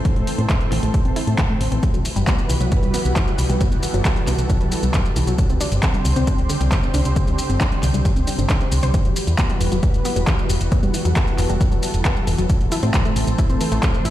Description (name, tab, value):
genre	uplifting trance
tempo	135 BPM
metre	4/4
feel	straight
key	E minor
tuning	A4 = 439 Hz
part	analog string pad	sustained chords	0.0-14.1 s	D3 to C5	-26 LUFS	equal	ensemble chorus, sidechain pumping
part	wide unison pluck	arpeggios	0.1-14.1 s	D3 to C5	-26 LUFS	left 2 dB	auto-pan, sidechain pumping, tape echo
part	electronic kick drum	drums	0.1-13.9 s	none	-19 LUFS	equal	none
part	punchy analog drum machine	drums	0.1-14.1 s	handclaps, hi-hat, shaker	-27 LUFS	equal	none
part	solid FM bass	bass	0.2-14.1 s	E1 to A2	-20 LUFS	equal	sidechain pumping
room	little or no reverb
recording	played on a big sound system in a bare room, stone room reverb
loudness	-17 LUFS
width	side -13 dB against mid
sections	0.0-14.1 A section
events	filter sweep on synth arpeggio sound 0.0-14.1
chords	0.0 Am; 1.8 Emadd9; 5.4 Csus2; 8.9 Emadd9; 12.5 Am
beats	| 0.05 0.50 0.94 1.39 | 1.83 2.27 2.72 3.16 | 3.61 4.05 4.50 4.94 | 5.38 5.83 6.27 6.72 | 7.16 7.61 8.05 8.50 | 8.94 9.38 9.83 10.27 | 10.72 11.16 11.61 12.05 | 12.50 12.94 13.38 13.83